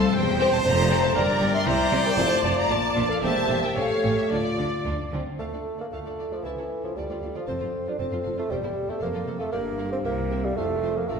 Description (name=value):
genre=quick classical-period movement for symphony orchestra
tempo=116 BPM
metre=2/4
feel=rubato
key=D minor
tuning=A4 = 441 Hz
part: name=rich studio violin section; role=melody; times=0.0-11.2 s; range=A4 to C6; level=-31 LUFS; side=left 2 dB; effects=none
part: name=mellow hollow wooden flute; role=second line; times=0.0-4.8 s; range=F4 to E5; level=-28 LUFS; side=left 1 dB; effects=none
part: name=warm studio viola section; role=accompaniment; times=0.0-11.2 s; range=D4 to E5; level=-31 LUFS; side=right 1 dB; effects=none
part: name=dark French horn section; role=sustained chords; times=0.0-11.2 s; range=F3 to A4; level=-31 LUFS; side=left 2 dB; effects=none
part: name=bright trumpet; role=stabs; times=0.0-5.1 s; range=A4 to D5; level=-29 LUFS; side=right 1 dB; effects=none
part: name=rich studio double bass section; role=bass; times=0.0-11.2 s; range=E1 to D2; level=-30 LUFS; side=equal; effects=none
part: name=rich symphonic cello section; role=bass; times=0.0-11.2 s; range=C#2 to D3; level=-31 LUFS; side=right 2 dB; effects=none
part: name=warm studio violin section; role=second line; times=0.4-11.2 s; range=Bb3 to F5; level=-33 LUFS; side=left 3 dB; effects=none
part: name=warm bassoon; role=accompaniment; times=5.4-11.2 s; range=E3 to D4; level=-29 LUFS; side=right 2 dB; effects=none
room=wet scoring stage reverb, RT60 1.5 s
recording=heard from further back in the room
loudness=-22 LUFS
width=side -6 dB against mid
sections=0.0-5.4 A section; 5.4-11.2 A section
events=none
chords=0.1 C/E; 0.6 F; 1.1 Gm; 1.7 C7; 2.2 F; 2.7 Bbmaj7; 3.2 Em7b5; 3.8 A7; 4.3 Dm; 6.5 A/C#; 7.0 Dm; 7.5 F; 8.5 C/E; 9.0 F; 9.5 Gm; 10.1 C7; 10.6 F